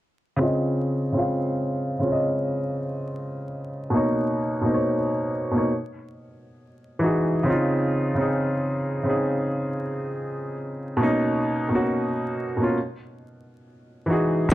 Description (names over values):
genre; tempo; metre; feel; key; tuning
hip hop; 68 BPM; 4/4; swing 63% on 16ths; Db major; A4 = 440 Hz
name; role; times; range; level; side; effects
warm upright piano; accompaniment; 0.4-14.5 s; Cb3 to F5; -24 LUFS; equal; cassette tape, low-pass filter, plate reverb
room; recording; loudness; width
moderate studio reverb, RT60 0.5 s; dark, warm production, vinyl crackle; -22 LUFS; side -15 dB against mid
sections
0.4-14.5 A section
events
filter sweep on upright piano 0.4-14.5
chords
0.4 Dbmaj9; 3.9 Cbmaj9; 5.7 Emaj9; 7.5 Dbmaj9; 11.0 Cbmaj9; 12.8 Emaj9